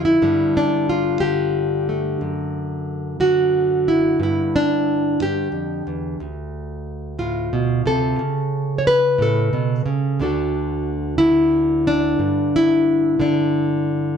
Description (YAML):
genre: folk, solo fingerstyle acoustic guitar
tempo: 60 BPM (dotted quarters)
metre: 6/8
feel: straight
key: unclear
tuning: A4 = 440 Hz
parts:
  - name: nylon-string guitar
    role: solo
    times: 0.0-14.2 s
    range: D2 to C#5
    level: -17 LUFS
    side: equal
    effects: slapback echo
room: light reverb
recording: dark, warm production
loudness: -17 LUFS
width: side -7 dB against mid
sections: 0.0-14.2 A section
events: none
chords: 0.2 Gsus2; 2.2 D/F#; 4.2 G5; 6.2 Dm7; 8.2 Aadd9/C#; 10.2 D; 12.2 G5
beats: | 0.20 1.20 | 2.20 3.20 | 4.20 5.20 | 6.19 7.19 | 8.19 9.19 | 10.20 11.20 | 12.20 13.20